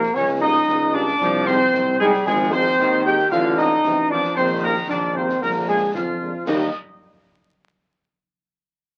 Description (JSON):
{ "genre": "military-style march for wind band", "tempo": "114 BPM", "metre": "2/4", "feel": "straight", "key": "Eb major", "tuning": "A4 = 436 Hz", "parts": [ { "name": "warm euphonium", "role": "second line", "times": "0.0-6.7 s", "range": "Eb3 to G4", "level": "-23 LUFS", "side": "equal", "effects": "none" }, { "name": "mellow trombone section", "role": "sustained chords", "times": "0.0-6.7 s", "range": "Bb2 to Eb4", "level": "-31 LUFS", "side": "equal", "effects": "none" }, { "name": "mellow tuba", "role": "bass", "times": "0.0-6.7 s", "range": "Ab1 to F2", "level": "-28 LUFS", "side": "equal", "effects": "none" }, { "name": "concert snare drum, clash cymbals and concert bass drum", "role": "drums", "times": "0.0-6.8 s", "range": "none", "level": "-38 LUFS", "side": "equal", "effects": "none" }, { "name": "mellow trumpet section", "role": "melody", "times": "0.2-6.7 s", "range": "F4 to G5", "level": "-30 LUFS", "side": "equal", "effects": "none" }, { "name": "piccolo", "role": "second line", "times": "0.2-6.8 s", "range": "F5 to G6", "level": "-28 LUFS", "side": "equal", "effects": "none" }, { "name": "warm woodwind section", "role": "second line", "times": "0.2-6.7 s", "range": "F4 to G5", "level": "-29 LUFS", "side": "equal", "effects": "none" }, { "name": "dark French horn section", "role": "accompaniment", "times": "0.4-6.7 s", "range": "F3 to F4", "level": "-32 LUFS", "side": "equal", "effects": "none" } ], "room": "moderate spring reverb, RT60 1.4 s", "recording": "very old 78 rpm record, vinyl crackle", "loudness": "-19 LUFS", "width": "mono", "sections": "0.0-6.5 A section; 6.5-7.5 B section", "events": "none", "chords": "0.2 Eb7/Db; 1.2 Ab/C; 2.3 Ab; 3.3 F7/A; 4.4 Eb/Bb; 5.4 Bb7; 6.5 Eb", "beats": "| 0.16 0.68 | 1.21 1.74 | 2.26 2.79 | 3.31 3.84 | 4.37 4.89 | 5.42 5.95 | 6.47" }